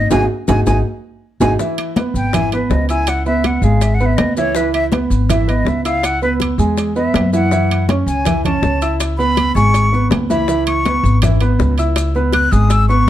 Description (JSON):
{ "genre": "Afro-Cuban jazz", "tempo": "162 BPM", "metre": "4/4", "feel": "straight", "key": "C# minor", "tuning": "A4 = 441 Hz", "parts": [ { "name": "breathy bright concert flute", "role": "melody", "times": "0.0-13.1 s", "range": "B4 to F#6", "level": "-19 LUFS", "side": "left 1 dB", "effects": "none" }, { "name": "warm concert grand piano", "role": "accompaniment", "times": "0.0-13.1 s", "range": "E3 to E6", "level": "-18 LUFS", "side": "right 3 dB", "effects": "none" }, { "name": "upright bass", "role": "bass", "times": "0.0-13.1 s", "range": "G#1 to F#2", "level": "-16 LUFS", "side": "left 1 dB", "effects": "none" }, { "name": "bongos", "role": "percussion", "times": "0.1-12.9 s", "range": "none", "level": "-25 LUFS", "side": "left 8 dB", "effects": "none" }, { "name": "congas", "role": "percussion", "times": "0.1-13.1 s", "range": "none", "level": "-22 LUFS", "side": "left 1 dB", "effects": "none" }, { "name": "maracas", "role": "percussion", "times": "0.1-13.1 s", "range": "none", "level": "-34 LUFS", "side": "left 4 dB", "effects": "none" }, { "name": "timbales", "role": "percussion", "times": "0.1-12.9 s", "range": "none", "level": "-25 LUFS", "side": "right 6 dB", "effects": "none" } ], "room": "light reverb", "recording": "dark, warm production", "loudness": "-13 LUFS", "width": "side -12 dB against mid", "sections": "0.0-1.6 A section; 1.6-13.1 B section", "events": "band accent 0.1-1.6; drum fill 0.9-1.6; flute solo 1.6-13.1", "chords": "0.1 G#5; 1.6 C#m7; 7.5 F#m7; 9.0 C#m7" }